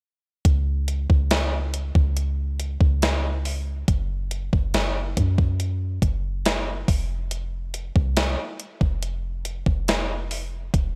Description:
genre	contemporary R&B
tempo	70 BPM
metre	4/4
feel	straight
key	unclear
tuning	A4 = 440 Hz
part	soft 808-style bass	bass	0.5-11.0 s	Eb1 to Gb2	-27 LUFS	equal	none
part	gated 80s digital drum machine	drums	0.5-10.9 s	hi-hat, kick drum, snare drum	-25 LUFS	equal	gated reverb, gated reverb snare
room	little or no reverb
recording	none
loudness	-24 LUFS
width	mono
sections	0.5-11.0 A section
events	none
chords	none

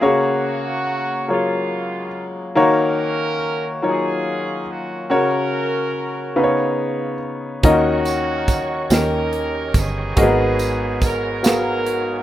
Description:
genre	slow gospel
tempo	47 BPM (dotted quarters)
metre	6/8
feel	straight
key	F# major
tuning	A4 = 439 Hz
part	clear horn section	melody	0.0-12.2 s	G#3 to A#4	-25 LUFS	right 2 dB	none
part	clear grand piano	accompaniment	0.0-12.2 s	G#2 to E#5	-19 LUFS	left 1 dB	none
part	bright tonewheel organ	sustained chords	7.6-12.2 s	F#4 to C#6	-32 LUFS	right 3 dB	fast rotary speaker, chorus vibrato
part	fingered electric bass	bass	7.6-12.2 s	G1 to D#2	-24 LUFS	right 1 dB	none
part	modern studio drum kit	drums	7.6-12.1 s	hi-hat, kick drum, snare drum	-17 LUFS	right 1 dB	none
part	tambourine	percussion	8.1-11.8 s	none	-32 LUFS	right 5 dB	none
room	little or no reverb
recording	rough home demo mix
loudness	-17 LUFS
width	side -12 dB against mid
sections	0.0-12.2 A section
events	none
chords	0.0 F#maj9/C#; 2.6 D#m9; 5.1 F#/C#; 6.4 C#9; 7.6 D#m7; 8.9 D#7; 10.2 G#m9

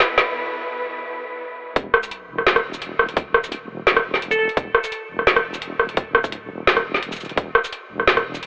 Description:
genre	half-time drum and bass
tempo	171 BPM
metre	4/4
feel	swing 53% on 16ths, half-time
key	unclear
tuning	A4 = 440 Hz
part	warm chamber cello section	sustained chords	0.0-1.7 s	B2 to B4	-29 LUFS	equal	sidechain pumping
part	drum and bass drum kit	drums	0.0-8.5 s	hi-hat, rim click, shaker, snare drum	-18 LUFS	equal	high-pass filter on snare, high-pass filter on hats, high-pass filter on perc, high-pass filter on room
part	deep soft wobble bass	bass	1.8-8.5 s	D1 to E1	-33 LUFS	equal	chorus
part	electronic kick drum	drums	1.8-7.5 s	none	-20 LUFS	equal	none
part	sub drop	sound effects	1.8-3.2 s	none	-47 LUFS	equal	none
part	glassy wavetable pluck	melody	4.3-4.5 s	A4	-27 LUFS	equal	chorus, cassette tape, dub echo
room	moderate huge ambient reverb, RT60 7.3 s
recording	high-pass filter, telephone sound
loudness	-18 LUFS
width	side -26 dB against mid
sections	0.0-1.8 A section; 1.8-8.5 B section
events	build-up 0.0-1.8; drum fill 0.0-0.4; filter sweep 0.0-1.8; break 0.4-1.8; drop 1.8-8.5; impact 1.8-3.2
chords	0.0 E5; 1.8 Dsus2

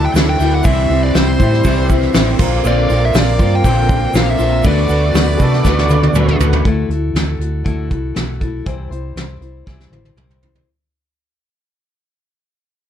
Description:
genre	folk rock and heartland rock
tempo	120 BPM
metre	4/4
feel	straight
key	D mixolydian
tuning	A4 = 440 Hz
part	bluesy overdriven lead guitar	melody	0.0-6.4 s	C5 to G5	-20 LUFS	equal	distortion, slapback echo
part	picked steel-string acoustic guitar	accompaniment	0.0-10.7 s	Bb2 to C5	-22 LUFS	left 7 dB	none
part	hand-pumped harmonium	sustained chords	0.0-6.6 s	E4 to C6	-29 LUFS	right 4 dB	none
part	electric guitar through a small old amp	riff	0.0-6.6 s	Bb2 to F#4	-19 LUFS	right 2 dB	ensemble chorus
part	hollow-body short-scale fingered electric bass	bass	0.0-10.6 s	A1 to C3	-17 LUFS	right 1 dB	none
part	egg shaker	percussion	0.1-6.5 s	none	-35 LUFS	right 23 dB	none
part	soft brush drum kit	drums	0.2-10.7 s	crash cymbal, hi-hat, kick drum, snare drum, toms	-17 LUFS	equal	none
part	clear upright piano	second line	5.4-6.2 s	G#4 to D5	-24 LUFS	right 9 dB	none
room	little or no reverb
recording	dark, warm production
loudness	-12 LUFS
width	side -10 dB against mid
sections	0.0-6.7 A section; 6.7-10.7 B section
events	drum fill 5.6-6.7, 9.7-10.7; fade-out 6.7-10.7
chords	0.0 Dadd9; 0.6 C; 2.4 Bbadd9; 4.6 D6; 6.7 Dadd9; 8.7 C

